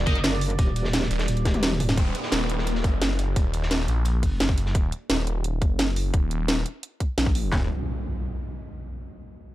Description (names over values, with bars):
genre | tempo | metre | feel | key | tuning
dark technical drum and bass | 173 BPM | 4/4 | straight | Eb harmonic minor | A4 = 440 Hz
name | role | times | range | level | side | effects
deep dark ambient pad | sustained chords | 0.0-2.0, 7.5-7.7 s | Bb3 to D5 | -38 LUFS | right 4 dB | chorus, built-in reverb, sidechain pumping
phased detuned saw bass | bass | 0.0-7.7 s | Eb1 to Bb1 | -25 LUFS | equal | phaser, tube saturation, sidechain pumping
metallic wobble bass | bass | 0.1-2.0 s | Eb1 to Gb1 | -25 LUFS | equal | chorus, tube saturation
crunchy breakbeat drum kit | drums | 0.1-4.7 s | hi-hat, snare drum | -35 LUFS | equal | high-pass filter on hats, high-pass filter on snare, high-pass filter on room
drum and bass drum kit | drums | 0.1-7.6 s | handclaps, kick drum, snare drum | -23 LUFS | equal | overdrive
drum and bass drum kit | drums | 0.1-7.4 s | hi-hat, snare drum, toms | -26 LUFS | equal | overdrive
downlifter and impact | sound effects | 2.0-4.7, 7.5-8.9 s | none | -32 LUFS | left 1 dB | none
room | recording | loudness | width
digital ambience | dark, warm production | -22 LUFS | side -15 dB against mid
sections
0.0-2.0 A section; 2.0-7.5 B section; 7.5-8.9 C section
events
drop 0.0-2.0; drum fill 1.5-2.0; kick drops out 1.6-2.0; filter sweep on detuned saw bass 2.0-7.5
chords
0.0 Ebm